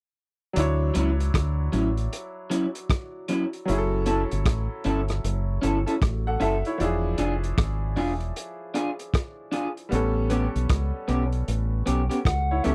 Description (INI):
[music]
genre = lovers rock reggae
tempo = 77 BPM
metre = 4/4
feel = swing 62% on 16ths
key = D major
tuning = A4 = 440 Hz
[part]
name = bright concert grand piano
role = accompaniment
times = 0.5-12.7 s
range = F3 to F#5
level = -33 LUFS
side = equal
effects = none
[part]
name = deep dub fingered electric bass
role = bass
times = 0.6-12.7 s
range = E1 to D2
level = -28 LUFS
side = equal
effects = none
[part]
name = crunchy breakbeat drum kit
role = drums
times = 0.6-12.7 s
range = hi-hat, kick drum, rim click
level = -28 LUFS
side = equal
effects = none
[part]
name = electric guitar through a small old amp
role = stabs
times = 0.9-12.7 s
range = F#3 to A4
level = -28 LUFS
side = equal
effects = lush chorus
[part]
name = reedy FM lead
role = melody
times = 12.2-12.7 s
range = E5 to F#5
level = -30 LUFS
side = equal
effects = chorus
[sound]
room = little or no reverb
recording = dry, close 1970s-style studio recording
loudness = -26 LUFS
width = mono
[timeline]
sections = 0.6-12.7 A section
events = none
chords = 0.6 Dmaj9; 3.7 F#m7; 6.8 E7b9; 9.9 A9